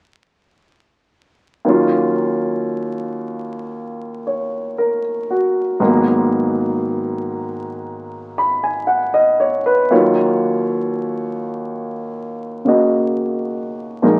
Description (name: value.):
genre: jazz.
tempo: 58 BPM.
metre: 4/4.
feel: swing 68% on 8ths.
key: Eb minor.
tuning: A4 = 440 Hz.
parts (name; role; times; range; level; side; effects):
warm concert grand piano; accompaniment; 1.6-14.2 s; Eb2 to Cb6; -19 LUFS; equal; none.
room: wet club reverb, RT60 0.8 s.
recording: very old 78 rpm record, vinyl crackle.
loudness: -19 LUFS.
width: mono.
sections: 1.7-14.2 A section.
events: none.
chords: 1.7 Ebm7; 5.8 Abm7; 9.9 Ebm7.